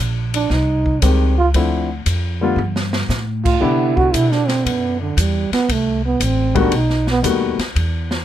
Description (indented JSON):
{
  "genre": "jazz, small-group swing and bop",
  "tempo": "116 BPM",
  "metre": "4/4",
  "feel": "swing 68% on 8ths",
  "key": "unclear",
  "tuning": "A4 = 440 Hz",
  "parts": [
    { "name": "upright bass", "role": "bass", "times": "0.0-8.2 s", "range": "A1 to C3", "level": "-19 LUFS", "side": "equal", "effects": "none" },
    { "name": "dark trombone", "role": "second line", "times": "0.3-7.2 s", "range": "D3 to F#4", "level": "-19 LUFS", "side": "right 4 dB", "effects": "none" },
    { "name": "open jazz drum kit", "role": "drums", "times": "0.3-8.2 s", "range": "crash cymbal, hi-hat, kick drum, ride cymbal, snare drum, toms", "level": "-23 LUFS", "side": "left 1 dB", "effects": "none" },
    { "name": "dark upright piano", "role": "accompaniment", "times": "1.0-7.6 s", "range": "D3 to G4", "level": "-19 LUFS", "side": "left 4 dB", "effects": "none" }
  ],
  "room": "little or no reverb",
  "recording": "close, detailed microphones",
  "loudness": "-15 LUFS",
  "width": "side -11 dB against mid",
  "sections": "0.0-8.2 A section",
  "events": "trombone solo 0.0-8.2; drum fill 2.6-3.1",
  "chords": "0.0 Abmaj7; 1.5 Dm9; 2.6 Gsus2; 3.6 Cmaj9; 5.7 F#dim; 6.7 B7b13",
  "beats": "0.51 1.03 | 1.54 2.06 2.58 3.10 | 3.61 4.13 4.65 5.17 | 5.68 6.20 6.72 7.24 | 7.76"
}